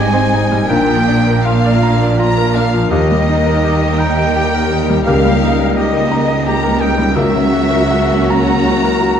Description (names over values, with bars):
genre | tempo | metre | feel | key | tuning
classical | 83 BPM | 3/4 | uneven beats, rubato | Eb major | A4 = 440 Hz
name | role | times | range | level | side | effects
clear concert grand piano | melody | 0.0-9.2 s | Db2 to C6 | -17 LUFS | left 2 dB | none
warm studio violin section | melody | 0.0-9.2 s | Eb5 to Bb5 | -22 LUFS | left 3 dB | none
mellow oboe | second line | 0.0-9.2 s | Eb5 to Bb5 | -23 LUFS | right 3 dB | none
rich studio violin section | second line | 0.0-9.2 s | F4 to Eb5 | -24 LUFS | left 2 dB | none
silver concert flute | second line | 0.0-9.2 s | Eb5 to Bb5 | -24 LUFS | equal | none
dark studio viola section | accompaniment | 0.0-9.2 s | Bb3 to F#4 | -20 LUFS | right 2 dB | none
dark French horn section | sustained chords | 0.0-9.2 s | F3 to D4 | -21 LUFS | left 4 dB | none
clear studio cello section | bass | 0.0-9.2 s | Db2 to Bb2 | -21 LUFS | right 2 dB | none
rich studio double bass section | bass | 0.0-9.2 s | Ab1 to Eb2 | -20 LUFS | right 3 dB | none
dark clarinet | second line | 0.7-7.4 s | D4 to G4 | -22 LUFS | left 2 dB | none
warm bassoon | accompaniment | 0.7-7.4 s | Bb3 | -24 LUFS | equal | none
room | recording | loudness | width
wet scoring stage reverb, RT60 1.7 s | dark, warm production | -11 LUFS | side -8 dB against mid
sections
0.0-9.2 A section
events
none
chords
0.0 Abmaj7; 0.7 Bb; 2.9 Eb; 5.1 Eb7/Db; 7.2 F#7/C#